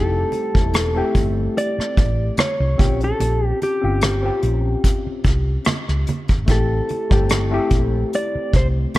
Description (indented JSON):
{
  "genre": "lush 1970s-style soul",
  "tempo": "73 BPM",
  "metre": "4/4",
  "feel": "swing 54% on 16ths",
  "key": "unclear",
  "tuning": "A4 = 439 Hz",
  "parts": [
    { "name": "mellow electric guitar", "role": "melody", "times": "0.0-8.7 s", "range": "G4 to D5", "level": "-24 LUFS", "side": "equal", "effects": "none" },
    { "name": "overdriven reed electric piano", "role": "accompaniment", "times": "0.0-9.0 s", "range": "G3 to A4", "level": "-24 LUFS", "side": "left 3 dB", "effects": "phaser" },
    { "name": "hollow-body short-scale fingered electric bass", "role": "bass", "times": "0.0-8.8 s", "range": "E1 to Db2", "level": "-21 LUFS", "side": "equal", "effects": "none" },
    { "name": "vintage brush drum kit", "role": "drums", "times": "0.3-9.0 s", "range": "hi-hat, kick drum, rim click", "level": "-19 LUFS", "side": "equal", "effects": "none" },
    { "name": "congas", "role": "percussion", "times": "0.3-9.0 s", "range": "none", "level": "-27 LUFS", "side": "right 3 dB", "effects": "none" }
  ],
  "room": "small room reverb",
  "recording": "dark, warm production",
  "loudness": "-17 LUFS",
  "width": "side -17 dB against mid",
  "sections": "0.0-9.0 A section",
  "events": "none",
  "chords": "0.0 Fmaj7 (rootless); 2.8 Bbm6; 6.5 Am7"
}